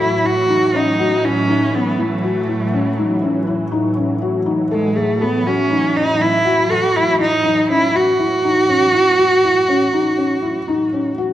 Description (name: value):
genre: contemporary instrumental, chamber music in an uneven meter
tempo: 121 BPM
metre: 7/4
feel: straight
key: F# dorian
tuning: A4 = 444 Hz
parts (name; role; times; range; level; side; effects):
- dark cello; melody; 0.0-11.2 s; G#3 to F#4; -16 LUFS; right 2 dB; none
- analog string pad; sustained chords; 0.0-11.3 s; A2 to F#3; -23 LUFS; right 1 dB; ensemble chorus
- felt-muted upright piano; arpeggios; 0.0-11.3 s; C#4 to A4; -19 LUFS; left 3 dB; none
room: wet recital hall reverb, RT60 1.7 s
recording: none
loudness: -14 LUFS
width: side -12 dB against mid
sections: 0.0-11.3 A section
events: none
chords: 0.0 F#m7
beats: 0.24 0.73 | 1.23 1.73 2.23 2.73 3.22 3.72 4.22 | 4.71 5.21 5.71 6.21 6.70 7.20 7.70 | 8.19 8.69 9.19 9.68 10.18 10.68 11.17